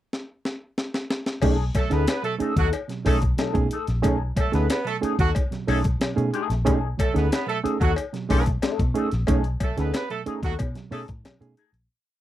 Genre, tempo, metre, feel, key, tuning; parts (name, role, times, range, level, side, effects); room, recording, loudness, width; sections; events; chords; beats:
funk; 92 BPM; 4/4; straight; B mixolydian; A4 = 440 Hz
breakbeat sampler-style drum kit; drums; 0.1-11.9 s; crash cymbal, hi-hat, kick drum, snare drum; -25 LUFS; equal
mellow electric guitar; accompaniment; 1.4-11.8 s; A3 to A4; -30 LUFS; left 8 dB; wah, wide subtle chorus
reed electric piano; stabs; 1.4-11.6 s; B2 to G#4; -27 LUFS; right 5 dB
vintage muted fingered electric bass; bass; 1.4-11.9 s; A#1 to B2; -25 LUFS; equal
cowbell; percussion; 1.4-11.4 s; -34 LUFS; left 7 dB
warm horn section; second line; 1.8-11.0 s; F#3 to B4; -28 LUFS; right 5 dB
little or no reverb; dry, close 1970s-style studio recording; -21 LUFS; side -13 dB against mid
0.0-1.4 pickup bar; 1.4-11.9 A section
drum fill 0.1-1.4; fade-out 9.3-11.9
0.0 N.C.; 1.4 B13
0.12 0.78 | 1.43 2.08 2.74 3.39 | 4.04 4.70 5.35 6.01 | 6.66 7.32 7.97 8.63 | 9.28 9.94 10.59 11.24